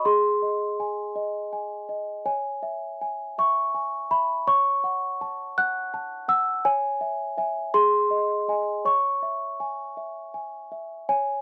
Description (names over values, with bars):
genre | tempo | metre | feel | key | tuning
classical, lullaby for celesta | 54 BPM (dotted quarters) | 6/8 | straight | C# minor | A4 = 441 Hz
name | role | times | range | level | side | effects
celesta | solo | 0.0-11.4 s | G#4 to F#6 | -26 LUFS | equal | none
room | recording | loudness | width
light reverb | dry, close 1970s-style studio recording | -26 LUFS | mono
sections
0.0-11.1 A section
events
none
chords
0.0 G#; 2.3 C#m; 4.5 F#m/C#; 6.7 C#m; 7.7 G#; 8.9 C#m